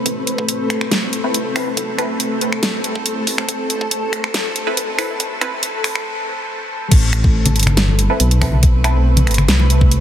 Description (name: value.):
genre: deep dubstep.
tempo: 140 BPM.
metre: 4/4.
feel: half-time.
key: A minor.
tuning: A4 = 440 Hz.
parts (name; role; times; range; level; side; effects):
granular cloud pad; sustained chords; 0.0-10.0 s; A3 to B4; -22 LUFS; equal; built-in reverb.
dark detuned saw bass; bass; 0.1-10.0 s; G1 to C2; -18 LUFS; equal; tube saturation, high-pass filter.
dubstep drum kit; drums; 0.1-10.0 s; crash cymbal, finger snaps, hi-hat, snare drum; -20 LUFS; equal; soft clipping on snare.
electronic kick drum; drums; 0.1-9.9 s; none; -14 LUFS; equal; high-pass filter on kick.
filtered dub chord stab; stabs; 1.2-9.0 s; C4 to B4; -26 LUFS; equal; phaser, dub echo.
congas; percussion; 7.5-9.9 s; none; -21 LUFS; left 2 dB; none.
room: light reverb.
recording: dense, heavily limited modern master, high-pass filter.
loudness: -15 LUFS.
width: side -10 dB against mid.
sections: 0.0-6.9 A section; 6.9-10.0 B section.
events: build-up 0.0-6.9; break 6.1-6.9; drop 6.9-10.0.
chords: 0.0 Amadd9.